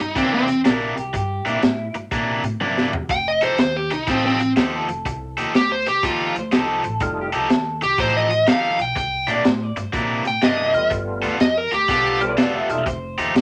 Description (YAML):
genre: electric blues shuffle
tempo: 123 BPM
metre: 4/4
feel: swing 65% on 8ths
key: unclear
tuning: A4 = 440 Hz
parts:
  - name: dark smooth lead guitar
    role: melody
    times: 0.0-12.2 s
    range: C4 to G5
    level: -21 LUFS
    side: equal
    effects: overdrive
  - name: overdriven electric guitar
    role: riff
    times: 0.0-13.4 s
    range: C3 to A4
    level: -26 LUFS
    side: equal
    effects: none
  - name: upright bass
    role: bass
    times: 0.0-13.4 s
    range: E1 to Bb2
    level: -32 LUFS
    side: equal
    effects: none
  - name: crunchy breakbeat drum kit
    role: drums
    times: 0.2-13.4 s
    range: hi-hat, kick drum, snare drum, toms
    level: -24 LUFS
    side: equal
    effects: none
  - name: electric guitar through a small old amp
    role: second line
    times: 0.7-13.3 s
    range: E4 to E5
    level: -29 LUFS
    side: equal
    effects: none
  - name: overdriven tonewheel organ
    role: accompaniment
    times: 7.0-7.3, 10.7-12.9 s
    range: G3 to F4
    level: -28 LUFS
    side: equal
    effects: slow rotary speaker, chorus vibrato
room: moderate small room reverb, RT60 0.5 s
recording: none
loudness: -20 LUFS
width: mono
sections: 0.0-13.4 A section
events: drum fill 2.6-3.1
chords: 0.0 C9; 3.1 F9; 9.0 C9; 10.9 G9; 12.9 F9